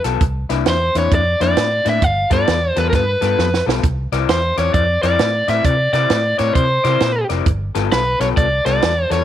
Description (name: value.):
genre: electric blues shuffle.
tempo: 132 BPM.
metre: 4/4.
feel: swing 64% on 8ths.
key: unclear.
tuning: A4 = 442 Hz.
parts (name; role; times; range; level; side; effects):
electric guitar through a small old amp; riff; 0.0-9.2 s; C3 to D5; -22 LUFS; left 15 dB; none.
vintage muted fingered electric bass; bass; 0.0-9.2 s; F1 to C3; -20 LUFS; equal; none.
compact cocktail drum kit; drums; 0.0-9.2 s; hi-hat, kick drum, snare drum; -20 LUFS; right 4 dB; none.
overdriven electric guitar; melody; 0.7-9.2 s; Bb4 to F5; -18 LUFS; equal; none.
room: light reverb, studio reverb.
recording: 1960s-style stereo.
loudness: -14 LUFS.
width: side -11 dB against mid.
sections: 0.0-9.2 A section.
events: drum fill 3.4-3.8.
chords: 0.2 C9; 2.0 G9; 3.8 C9; 7.5 G9.